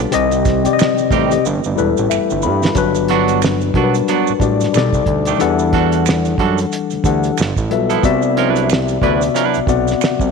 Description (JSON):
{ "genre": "R&B, neo-soul", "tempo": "91 BPM", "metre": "4/4", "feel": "swing 60% on 16ths", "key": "G major", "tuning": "A4 = 439 Hz", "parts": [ { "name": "mellow tine electric piano", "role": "accompaniment", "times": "0.0-10.3 s", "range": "B2 to B5", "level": "-16 LUFS", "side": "left 9 dB", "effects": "none" }, { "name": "tonewheel organ", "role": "sustained chords", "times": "0.0-2.7 s", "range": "Eb3 to G4", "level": "-26 LUFS", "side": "right 14 dB", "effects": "slow rotary speaker" }, { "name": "fat analog bass", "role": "bass", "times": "0.0-10.3 s", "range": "E1 to G2", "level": "-19 LUFS", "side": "right 3 dB", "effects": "none" }, { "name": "cloth-damped thuddy drum kit", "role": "drums", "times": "0.1-10.3 s", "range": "hi-hat, kick drum, snare drum", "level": "-19 LUFS", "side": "right 3 dB", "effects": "none" }, { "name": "maracas and finger snaps", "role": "percussion", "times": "0.1-10.3 s", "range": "none", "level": "-29 LUFS", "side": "right 17 dB", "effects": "none" }, { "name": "semi-hollow electric guitar", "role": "second line", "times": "1.1-10.1 s", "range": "D#3 to B4", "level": "-20 LUFS", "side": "right 16 dB", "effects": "none" } ], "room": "moderate echo chamber reverb, RT60 2.0 s", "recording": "1960s-style stereo with parts hard left and right", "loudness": "-13 LUFS", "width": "side -5 dB against mid", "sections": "0.0-2.8 A section; 2.8-10.3 B section", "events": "drum fill 1.4-2.8; tine electric piano fill 1.8-2.8", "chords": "0.1 Cm; 1.4 G69; 2.8 Gmaj7; 4.7 B7alt; 5.4 Em11; 7.4 G13; 8.0 Cmaj9#11" }